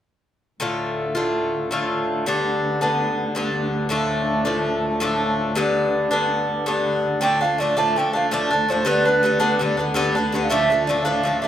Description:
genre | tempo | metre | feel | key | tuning
celtic folk | 109 BPM (dotted quarters) | 9/8 | straight | D dorian | A4 = 439 Hz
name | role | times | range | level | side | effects
Irish bouzouki | accompaniment | 0.6-11.5 s | G2 to F4 | -20 LUFS | left 1 dB | none
rich studio string section | drone | 0.6-11.5 s | D2 to D3 | -28 LUFS | right 1 dB | none
hollow wooden flute | melody | 7.2-11.5 s | B4 to A5 | -21 LUFS | right 3 dB | plate reverb
room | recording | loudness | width
wet studio reverb, RT60 0.6 s | none | -19 LUFS | side -10 dB against mid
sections
0.6-7.2 A section; 7.2-11.5 B section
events
none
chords
0.6 Dm; 2.3 G; 3.9 Dm; 5.6 G; 7.2 Dm; 8.9 G; 10.5 Dm

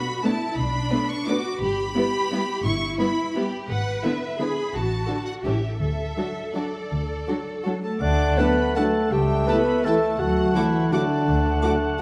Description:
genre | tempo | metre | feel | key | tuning
classical, orchestral ballroom waltz | 153-189 BPM | 3/4 | rubato | D major | A4 = 440 Hz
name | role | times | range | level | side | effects
rich chamber violin section | melody | 0.0-12.0 s | D5 to D6 | -34 LUFS | equal | none
rich symphonic cello section | bass | 0.0-12.0 s | D3 to B4 | -30 LUFS | equal | none
rich chamber violin section | second line | 0.2-12.0 s | D4 to D6 | -36 LUFS | equal | none
rich studio viola section | accompaniment | 0.2-12.0 s | D3 to F#4 | -31 LUFS | equal | none
rich chamber double bass section | bass | 0.6-11.6 s | G1 to D2 | -29 LUFS | equal | none
mellow clarinet | second line | 7.8-12.0 s | D4 to D5 | -27 LUFS | equal | none
mellow cor anglais | second line | 8.0-12.0 s | E5 to F#5 | -32 LUFS | equal | none
mellow hollow silver concert flute | second line | 8.0-12.0 s | A5 | -33 LUFS | equal | none
mellow bassoon | accompaniment | 8.0-12.0 s | A3 | -30 LUFS | equal | none
mellow French horn section | sustained chords | 8.4-12.0 s | E3 to A4 | -32 LUFS | equal | none
room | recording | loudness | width
moderate concert hall reverb, RT60 1.8 s | dark, warm production | -23 LUFS | mono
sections
0.0-8.0 A section; 8.0-12.0 B section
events
none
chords
0.0 Bm7; 1.6 Em/G; 3.7 E7/G#; 4.7 D/A; 5.4 A7; 5.8 D; 9.1 A7/C#; 10.2 D

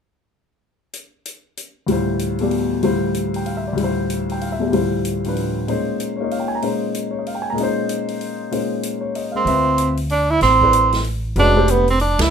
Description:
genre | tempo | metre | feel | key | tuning
modal jazz | 190 BPM | 3/4 | swing 62% on 8ths | unclear | A4 = 439 Hz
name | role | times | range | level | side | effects
swinging big-band drum kit | drums | 0.9-12.3 s | hi-hat, kick drum, ride cymbal, snare drum | -31 LUFS | equal | none
warm grand piano | accompaniment | 1.9-11.8 s | D2 to Bb5 | -20 LUFS | left 2 dB | none
breathy tenor saxophone | melody | 9.4-12.3 s | B3 to E4 | -15 LUFS | right 3 dB | none
upright bass | bass | 9.5-12.3 s | F1 to D2 | -20 LUFS | equal | none
room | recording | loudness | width
moderate small room reverb, RT60 0.5 s | minimal, uncompressed stereo recording | -17 LUFS | side -7 dB against mid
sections
1.9-9.5 A section; 9.5-12.3 B section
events
none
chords
0.9 N.C.; 1.9 Dm11; 5.7 Bbm11; 9.5 Dm9

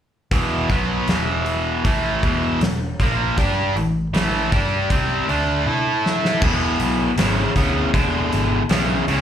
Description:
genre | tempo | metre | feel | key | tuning
blues rock power trio and southern rock | 79 BPM | 4/4 | straight | unclear | A4 = 435 Hz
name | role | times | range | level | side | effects
overdriven electric guitar | riff | 0.3-9.2 s | E2 to A4 | -20 LUFS | equal | slapback echo
vintage muted fingered electric bass | bass | 0.3-9.2 s | E1 to A2 | -24 LUFS | equal | none
big rock drum kit | drums | 0.3-9.2 s | crash cymbal, hi-hat, kick drum, snare drum, toms | -23 LUFS | equal | none
room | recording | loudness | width
light reverb | live gig heard through the venue's PA, club reverb | -17 LUFS | side -9 dB against mid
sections
0.3-6.4 A section; 6.4-9.2 B section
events
drum fill 5.7-6.4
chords
0.3 E5; 3.4 A5; 6.4 E7

